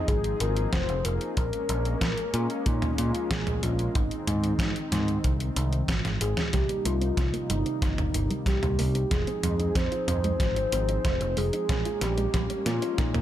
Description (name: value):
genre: synthwave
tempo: 93 BPM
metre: 4/4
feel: straight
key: Bb dorian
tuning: A4 = 440 Hz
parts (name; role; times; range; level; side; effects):
- soft octave-layered synth lead; melody; 0.0-13.2 s; Eb4 to C5; -31 LUFS; left 1 dB; chorus, ping-pong delay
- warm analog pad; sustained chords; 0.0-13.2 s; C3 to Ab4; -34 LUFS; left 1 dB; wide subtle chorus, sidechain pumping
- overdriven picked electric bass; bass; 0.1-13.2 s; F1 to Bb2; -28 LUFS; equal; sidechain pumping
- detuned 8-bit digital drum machine; drums; 0.1-13.2 s; hi-hat, snare drum, toms; -31 LUFS; right 1 dB; overdrive
- kick drum; drums; 0.1-13.1 s; none; -29 LUFS; equal; none
- soft round pluck; arpeggios; 6.5-13.2 s; G3 to F4; -37 LUFS; right 3 dB; chorus, tape echo
room: light reverb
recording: none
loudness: -24 LUFS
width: side -12 dB against mid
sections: 0.0-6.5 A section; 6.5-13.2 B section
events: drum fill 5.9-6.5, 6.5-13.2; filter sweep on synth arpeggio sound 6.5-13.2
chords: 0.0 Fm7; 1.4 Bbm7; 4.0 Ab; 6.5 Cm7; 9.1 Fm7; 11.7 Bbm7